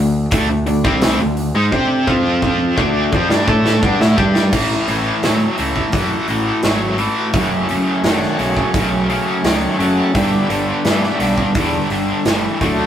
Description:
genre	classic rock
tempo	86 BPM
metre	4/4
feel	straight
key	A major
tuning	A4 = 439 Hz
part	reed electric piano	accompaniment	0.0-4.5 s	C4 to A5	-26 LUFS	left 2 dB	fast tremolo
part	cranked stack guitar	riff	0.0-12.9 s	F#2 to C5	-17 LUFS	equal	overdrive, harmonic tremolo
part	growling picked electric bass	bass	0.0-12.8 s	F#1 to C3	-21 LUFS	equal	overdrive
part	big rock drum kit	drums	0.3-12.8 s	crash cymbal, hi-hat, kick drum, snare drum	-20 LUFS	right 1 dB	none
part	bright tonewheel organ	sustained chords	4.9-12.9 s	E3 to A4	-23 LUFS	left 1 dB	slow rotary speaker, overdrive
room	wet studio reverb, RT60 0.5 s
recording	rough rehearsal-room recording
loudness	-14 LUFS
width	side -10 dB against mid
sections	0.0-4.5 A section; 4.5-12.9 B section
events	drum fill 1.7-4.5; reed electric piano fill 3.1-4.5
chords	0.0 D5; 2.1 F5; 2.8 D5; 4.5 A; 7.3 F#m; 10.1 G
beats	0.33 1.03 | 1.73 2.43 3.13 3.83 | 4.53 5.23 5.93 6.63 | 7.34 8.04 8.74 9.45 | 10.15 10.85 11.56 12.26

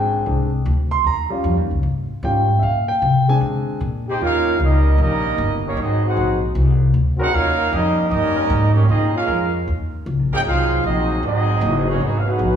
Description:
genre	jazz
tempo	153 BPM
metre	4/4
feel	swing 64% on 8ths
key	unclear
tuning	A4 = 439 Hz
part	warm concert grand piano	accompaniment	0.0-3.8 s	G3 to C6	-20 LUFS	equal	none
part	upright bass	bass	0.0-12.6 s	Gb1 to D3	-19 LUFS	equal	none
part	mellow trumpet section	melody	4.1-12.6 s	Bb3 to G5	-22 LUFS	right 2 dB	none
part	mellow trombone section	second line	4.1-12.6 s	Gb3 to G4	-23 LUFS	right 1 dB	none
part	dark trombone section	sustained chords	6.2-12.6 s	Gb3 to Bb4	-30 LUFS	right 1 dB	none
room	wet recital hall reverb, RT60 1.4 s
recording	recorded in a church or concert hall, small room ambience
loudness	-16 LUFS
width	side -8 dB against mid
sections	0.0-4.2 A section; 4.2-12.6 B section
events	grand piano solo 0.0-4.2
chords	0.0 Bb7 (rootless); 1.0 Eb7; 2.6 Bb7; 4.2 Eb7; 5.8 Ab7; 7.3 Eb7; 8.9 Bbm7; 9.7 Eb7; 10.5 Ab7; 12.0 Abm7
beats	0.26 0.65 | 1.05 1.44 1.83 2.23 | 2.62 3.02 3.41 3.80 | 4.20 4.59 4.98 5.37 | 5.76 6.16 6.55 6.94 | 7.33 7.72 8.11 8.50 | 8.89 9.28 9.67 10.06 | 10.45 10.84 11.23 11.62 | 12.01 12.40

